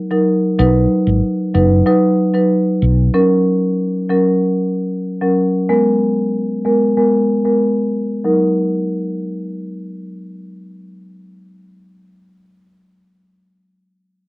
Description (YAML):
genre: dancehall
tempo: 94 BPM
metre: 4/4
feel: straight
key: Eb minor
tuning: A4 = 442 Hz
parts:
  - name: marimba with medium mallets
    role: accompaniment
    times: 0.1-11.8 s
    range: Gb3 to B4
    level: -14 LUFS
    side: equal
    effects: low-pass filter, cassette tape
  - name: woody fretless electric bass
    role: bass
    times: 0.6-3.1 s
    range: F#1 to B1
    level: -13 LUFS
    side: equal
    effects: lush chorus
room: light reverb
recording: home recording on cassette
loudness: -13 LUFS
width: side -21 dB against mid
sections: 0.0-8.2 A section; 8.2-10.8 B section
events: filter sweep on marimba 0.0-8.2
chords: 0.0 Ebm; 0.6 B; 3.1 Gb; 5.7 Abmadd9; 8.2 Ebm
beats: | 0.59 1.23 1.86 2.50 | 3.14 3.78 4.42 5.06 | 5.70 6.33 6.97 7.61 | 8.25 8.89 9.52 10.16